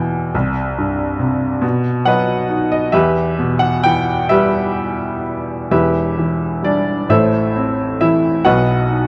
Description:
classical, lyrical solo piano; 42-47 BPM (dotted quarters); 6/8; rubato; E harmonic minor, E minor from 5.7 s; A4 = 439 Hz
clear upright piano; solo; 0.0-9.1 s; E1 to G5; -17 LUFS; equal
moderate plate reverb, RT60 3.1 s; -17 LUFS; mono
0.0-5.7 A section; 5.7-9.1 B section
0.3 C5; 1.6 B; 2.9 Em; 7.1 Am; 8.4 B

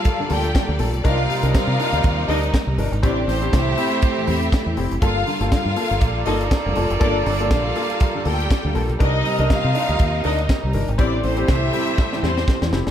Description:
disco; 121 BPM; 4/4; swing 56% on 16ths; G minor; A4 = 440 Hz
warm studio string section; second line; 0.0-12.7 s; C4 to G5; -25 LUFS; left 2 dB
clear studio string section; sustained chords; 0.0-12.9 s; C3 to D5; -28 LUFS; right 2 dB
mellow horn section; stabs; 0.0-12.7 s; F3 to Eb5; -27 LUFS; right 3 dB
tight funk drum kit; drums; 0.0-12.9 s; hi-hat, kick drum, snare drum; -22 LUFS; equal
warm concert grand piano; accompaniment; 0.1-12.9 s; G2 to Bb4; -25 LUFS; left 3 dB
fingered electric bass; bass; 0.3-12.9 s; F1 to C3; -22 LUFS; equal
light reverb; -17 LUFS; side -10 dB against mid
0.0-12.9 A section
drum fill 12.0-12.9
0.0 Gm9; 1.0 Cm7; 3.0 Am7; 5.0 Gm9; 9.0 Cm7; 11.0 Am7

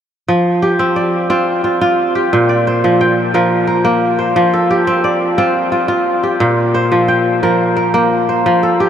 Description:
west african traditional; 117 BPM (dotted quarters); 12/8; straight; F major; A4 = 440 Hz
kora; arpeggios; 0.3-8.9 s; Bb2 to G5; -11 LUFS; equal
wet huge ambient reverb, RT60 9.3 s; in a vast, echoing space; -11 LUFS; side -9 dB against mid
0.3-8.9 A section
0.3 F5; 2.3 Bb; 4.4 F; 6.4 Bb5

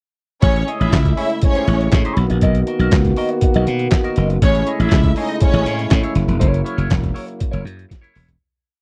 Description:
disco; 120 BPM; 4/4; straight; A4 = 442 Hz
warm studio string section; second line; 0.4-5.9 s; C#4 to E5; -25 LUFS; equal
clean electric guitar; accompaniment; 0.4-8.3 s; E4 to D#5; -28 LUFS; equal; wah
mellow French horn section; sustained chords; 0.4-8.4 s; C#3 to F#4; -26 LUFS; equal
slap bass; bass; 0.4-8.4 s; E1 to B2; -20 LUFS; equal
trip hop sampler-style drum kit; drums; 0.4-8.4 s; handclaps, hi-hat, kick drum, snare drum, toms; -19 LUFS; equal
little or no reverb; dry, close 1970s-style studio recording; -17 LUFS; mono
0.4-8.4 pre-chorus
fade-out 6.4-8.4; drum fill 7.9-8.4
0.4 Amaj7; 2.2 Bmaj7; 4.4 Amaj7; 6.2 F#7

